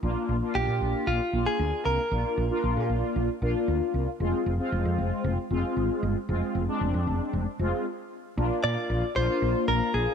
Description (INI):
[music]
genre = synth-pop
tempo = 115 BPM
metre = 4/4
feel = straight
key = unclear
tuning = A4 = 440 Hz
[part]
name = mellow synth brass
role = accompaniment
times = 0.0-10.1 s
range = Ab3 to F4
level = -29 LUFS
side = left 1 dB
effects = chorus, phaser
[part]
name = woody fretless electric bass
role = bass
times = 0.0-10.1 s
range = F1 to Bb2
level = -28 LUFS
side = equal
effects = none
[part]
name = direct-recorded clean electric guitar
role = melody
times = 0.6-2.9, 8.6-10.1 s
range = F4 to D5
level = -28 LUFS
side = equal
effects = wide subtle chorus, slapback echo
[sound]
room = light reverb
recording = none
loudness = -25 LUFS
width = side -7 dB against mid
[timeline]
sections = 0.0-8.4 A section; 8.4-10.1 B section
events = stop 7.9-8.4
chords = 0.0 Bb; 4.2 Fm; 8.1 N.C.; 8.4 Bbadd9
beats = | 0.03 0.55 1.07 1.59 | 2.12 2.64 3.16 3.68 | 4.20 4.72 5.25 5.77 | 6.29 6.81 7.33 7.85 | 8.38 8.90 9.42 9.94